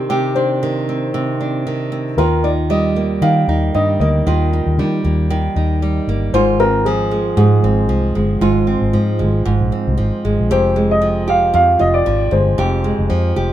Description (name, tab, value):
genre	acoustic pop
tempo	115 BPM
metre	4/4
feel	swing 55% on 16ths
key	unclear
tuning	A4 = 442 Hz
part	dark upright piano	melody	0.0-13.5 s	G4 to F5	-18 LUFS	left 1 dB	none
part	nylon-string guitar	accompaniment	0.0-13.5 s	F2 to G4	-18 LUFS	right 3 dB	none
part	vintage muted fingered electric bass	bass	2.2-13.5 s	F1 to Eb3	-17 LUFS	left 1 dB	none
room	little or no reverb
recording	minimal, uncompressed stereo recording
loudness	-14 LUFS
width	side -12 dB against mid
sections	0.0-10.5 A section; 10.5-13.5 B section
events	none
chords	0.0 Cmadd9; 2.2 Ebadd9; 6.3 Ab6; 10.5 Fmadd9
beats	| 0.10 0.62 1.14 1.66 | 2.18 2.70 3.22 3.74 | 4.26 4.78 5.30 5.82 | 6.34 6.86 7.38 7.90 | 8.42 8.94 9.46 9.98 | 10.50 11.02 11.54 12.06 | 12.58 13.10